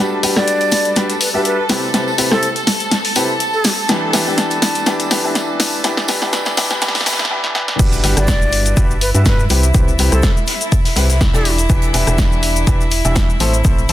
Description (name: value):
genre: piano house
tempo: 123 BPM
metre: 4/4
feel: swing 54% on 16ths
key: E minor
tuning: A4 = 440 Hz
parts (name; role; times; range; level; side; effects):
- rich studio violin section; sustained chords; 0.0-13.9 s; E4 to A5; -23 LUFS; equal; sidechain pumping
- clear upright piano; riff; 0.0-13.9 s; A2 to E5; -20 LUFS; left 1 dB; sidechain pumping, low-pass filter, tape echo
- punchy analog drum machine; drums; 0.2-13.9 s; crash cymbal, hi-hat, rim click, shaker, snare drum; -18 LUFS; left 1 dB; overdrive
- tambourine; percussion; 0.2-7.3 s; none; -28 LUFS; right 2 dB; none
- breathy mellow silver concert flute; melody; 0.4-3.7, 8.2-11.5 s; A4 to D5; -22 LUFS; left 1 dB; tape echo
- organ-like FM bass; bass; 7.8-13.9 s; E1 to G2; -16 LUFS; equal; tube saturation, sidechain pumping
- electronic kick drum; drums; 7.8-13.8 s; none; -15 LUFS; equal; none
- open jazz drum kit; drums; 7.8-13.9 s; hi-hat, shaker, snare drum; -29 LUFS; right 2 dB; sidechain pumping on hats, high-pass filter on hats, low-pass filter on hats, high-pass filter on snare, low-pass filter on snare, sidechain pumping on perc, high-pass filter on perc, low-pass filter on perc, high-pass filter on room, low-pass filter on room
room: light reverb, small room reverb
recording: dense, heavily limited modern master, high-pass filter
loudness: -13 LUFS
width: side -13 dB against mid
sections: 0.0-7.8 A section; 7.8-13.9 B section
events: build-up 0.0-7.8; drum fill 0.0-7.3, 7.4-7.8; filter sweep on upright piano 0.0-7.8; filter sweep 0.0-7.8; drop 7.8-13.9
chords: 0.0 Gmaj7; 1.7 Cmaj7; 3.6 Em7; 7.8 Gmaj7; 9.5 Cmaj7; 11.5 Em7; 13.4 Am